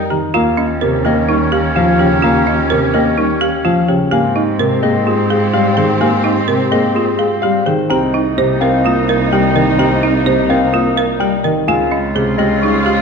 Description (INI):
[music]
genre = classical, minimalist pattern music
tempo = 127 BPM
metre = 4/4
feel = straight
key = unclear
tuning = A4 = 440 Hz
[part]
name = mellow electric guitar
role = melody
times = 0.0-12.9 s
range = G4 to G5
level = -20 LUFS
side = left 9 dB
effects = none
[part]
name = clear oboe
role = second line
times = 0.0-13.0 s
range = C4 to F4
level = -23 LUFS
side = right 3 dB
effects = none
[part]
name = dark baby grand piano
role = accompaniment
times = 0.0-12.9 s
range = C3 to C4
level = -17 LUFS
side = left 2 dB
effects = none
[part]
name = warm studio string section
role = sustained chords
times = 0.0-13.0 s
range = Bb3 to G4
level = -22 LUFS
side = left 4 dB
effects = none
[part]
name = folk marimba with hard mallets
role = arpeggios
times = 0.0-13.0 s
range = Db4 to C5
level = -18 LUFS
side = right 7 dB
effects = none
[part]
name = worn celesta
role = arpeggios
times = 0.0-13.0 s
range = Eb5 to Eb6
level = -24 LUFS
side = left 4 dB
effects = none
[part]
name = rich cello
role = bass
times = 0.0-13.0 s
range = C2 to Ab2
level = -20 LUFS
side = right 3 dB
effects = none
[sound]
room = wet scoring stage reverb, RT60 1.8 s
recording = dark, warm production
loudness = -12 LUFS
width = side -5 dB against mid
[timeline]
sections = 0.3-13.0 A section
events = none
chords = 0.3 Eb13; 4.1 Abmaj9; 7.9 Cm7; 11.7 Dbmaj9